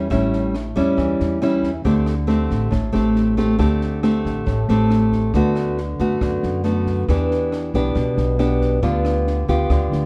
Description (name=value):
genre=bossa nova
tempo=138 BPM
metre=4/4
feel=straight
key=unclear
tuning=A4 = 440 Hz
part: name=nylon-string guitar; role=accompaniment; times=0.0-10.1 s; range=A2 to G4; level=-21 LUFS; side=equal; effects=none
part: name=upright bass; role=bass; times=0.0-10.1 s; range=A1 to F#2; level=-25 LUFS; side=equal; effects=none
part: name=compact cocktail drum kit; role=drums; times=0.1-10.0 s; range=kick drum, rim click, snare drum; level=-31 LUFS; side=equal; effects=none
room=light reverb, small room ambience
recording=rough home demo mix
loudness=-19 LUFS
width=mono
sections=0.0-10.1 A section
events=none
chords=0.0 A7; 1.9 D7sus4; 5.3 Bm7/D; 7.1 Em7; 8.8 G7/D